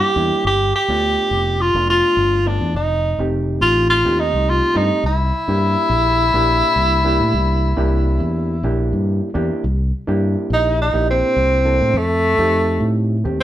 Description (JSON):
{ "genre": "straight-eighth soul blues", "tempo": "104 BPM", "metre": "4/4", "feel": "swing 53% on 16ths", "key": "C mixolydian", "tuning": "A4 = 440 Hz", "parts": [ { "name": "clear tenor saxophone", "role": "melody", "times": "0.0-13.4 s", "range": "A3 to G4", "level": "-17 LUFS", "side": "equal", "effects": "none" }, { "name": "overdriven reed electric piano", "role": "accompaniment", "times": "0.0-13.4 s", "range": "Eb3 to A4", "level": "-24 LUFS", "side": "right 1 dB", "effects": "none" }, { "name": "fingered electric bass", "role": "bass", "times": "0.2-13.4 s", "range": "F1 to A2", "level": "-19 LUFS", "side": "equal", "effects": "none" } ], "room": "moderate large studio reverb, RT60 0.9 s", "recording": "band playing live in one room", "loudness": "-15 LUFS", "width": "side -12 dB against mid", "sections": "0.0-9.6 A section; 9.6-13.4 B section", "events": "tenor saxophone solo 9.6-13.4", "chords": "0.4 G9; 2.7 F9; 5.0 C9; 11.9 F9", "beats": "| 0.44 1.02 1.59 2.17 | 2.74 3.32 3.89 4.46 | 5.04 5.61 6.19 6.76 | 7.34 7.91 8.49 9.06 | 9.64 10.21 10.79 11.36 | 11.94 12.52 13.09" }